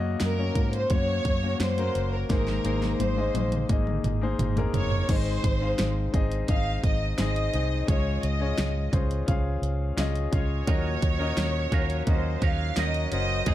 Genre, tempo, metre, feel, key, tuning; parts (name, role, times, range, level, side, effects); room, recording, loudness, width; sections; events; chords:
piano-driven pop; 86 BPM; 4/4; straight; A4 = 440 Hz
clear grand piano; accompaniment; 0.0-13.5 s; Ab2 to F5; -30 LUFS; left 5 dB
vintage muted fingered electric bass; bass; 0.0-13.5 s; Gb1 to Ab2; -28 LUFS; right 1 dB
warm symphonic violin section; melody; 0.2-13.5 s; Bb4 to F5; -31 LUFS; equal
pop drum kit; drums; 0.2-13.5 s; crash cymbal, hi-hat, kick drum, snare drum, toms; -27 LUFS; right 1 dB
clean electric guitar; riff; 10.7-13.5 s; Ab2 to Bb4; -34 LUFS; right 10 dB; wide subtle chorus
light reverb, digital ambience; dark, warm production; -23 LUFS; side -13 dB against mid
0.0-5.1 A section; 5.1-13.5 B section
drum fill 2.3-5.1
0.0 Gb; 2.3 Abadd9; 5.1 Ab; 7.9 Dbadd9; 10.7 Ebm7